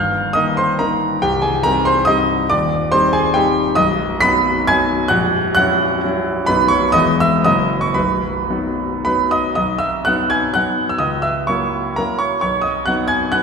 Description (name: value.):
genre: classical, romantic triple-time dance for piano with dotted rhythms.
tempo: 106-146 BPM.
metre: 3/4.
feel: rubato.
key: B major from 3.8 s.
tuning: A4 = 444 Hz.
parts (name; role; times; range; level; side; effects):
clear grand piano; solo; 0.0-13.4 s; A#0 to B6; -14 LUFS; equal; none.
room: wet concert hall reverb, RT60 1.9 s.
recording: recorded in a church or concert hall.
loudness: -14 LUFS.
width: side -5 dB against mid.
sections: 0.0-9.6 A section; 9.6-13.4 B section.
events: none.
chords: 0.0 Eb/G; 1.2 Cm; 2.5 Cm/Eb; 3.8 B; 5.1 F#7/A#; 6.5 B; 7.0 Emaj7; 7.5 F#7; 8.0 B; 11.0 F#7/C#; 12.4 B.